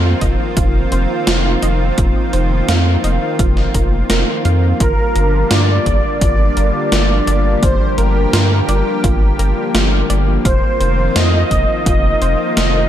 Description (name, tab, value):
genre	synthwave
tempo	85 BPM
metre	4/4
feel	straight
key	unclear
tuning	A4 = 442 Hz
part	lush unison pad	sustained chords	0.0-12.9 s	D3 to G4	-20 LUFS	equal	chorus, sidechain pumping
part	analog pluck	arpeggios	0.0-12.8 s	F4 to F5	-26 LUFS	right 4 dB	chorus, ping-pong delay
part	round analog bass	bass	0.0-12.9 s	F1 to G2	-16 LUFS	equal	none
part	electronic kick drum	drums	0.2-12.0 s	none	-16 LUFS	equal	none
part	gated 80s digital drum machine	drums	0.2-12.7 s	hi-hat, snare drum	-20 LUFS	equal	gated reverb, gated reverb snare, overdrive
part	soft supersaw	melody	4.8-12.9 s	Bb4 to Eb5	-19 LUFS	equal	tape echo
room	light reverb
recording	dark, warm production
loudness	-12 LUFS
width	side -11 dB against mid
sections	0.0-12.9 A section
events	none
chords	0.0 F7sus4; 4.8 Gm7; 10.5 F7sus4